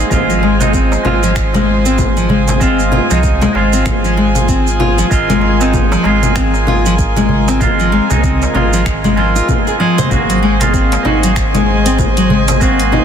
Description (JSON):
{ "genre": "organic downtempo", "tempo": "96 BPM", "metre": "4/4", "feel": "swing 59% on 16ths", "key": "unclear", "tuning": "A4 = 440 Hz", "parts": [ { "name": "clean electric guitar", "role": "accompaniment", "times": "0.0-13.0 s", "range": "Ab3 to Ab4", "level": "-18 LUFS", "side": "right 3 dB", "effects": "sidechain pumping, ping-pong delay" }, { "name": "warm studio string section", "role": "sustained chords", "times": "0.0-13.0 s", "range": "F4 to Ab5", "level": "-19 LUFS", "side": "right 1 dB", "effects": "sidechain pumping" }, { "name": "nylon-string guitar", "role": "arpeggios", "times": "0.0-13.0 s", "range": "F3 to C5", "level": "-16 LUFS", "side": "left 3 dB", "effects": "ping-pong delay" }, { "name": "warm sub bass", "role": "bass", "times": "0.0-13.0 s", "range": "Ab1 to C2", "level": "-16 LUFS", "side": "equal", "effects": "none" }, { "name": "quartz singing bowl", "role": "texture", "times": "0.0-10.1 s", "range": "none", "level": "barely audible", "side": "none", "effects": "none" }, { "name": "deep house drum kit", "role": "drums", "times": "0.1-13.0 s", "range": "congas, finger snaps, hi-hat, shaker", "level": "-19 LUFS", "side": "left 2 dB", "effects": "soft clipping on snare" }, { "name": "electronic kick drum", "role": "drums", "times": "0.1-12.8 s", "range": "none", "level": "-18 LUFS", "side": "equal", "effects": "none" }, { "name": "darbuka", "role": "percussion", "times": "0.4-12.6 s", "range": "none", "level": "-22 LUFS", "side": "right 3 dB", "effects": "none" } ], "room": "light reverb, studio reverb", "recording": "dense, heavily limited modern master", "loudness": "-10 LUFS", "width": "side -8 dB against mid", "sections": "0.0-10.1 A section; 10.1-13.0 B section", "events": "none", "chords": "0.1 Fm/Ab; 10.1 Ab7" }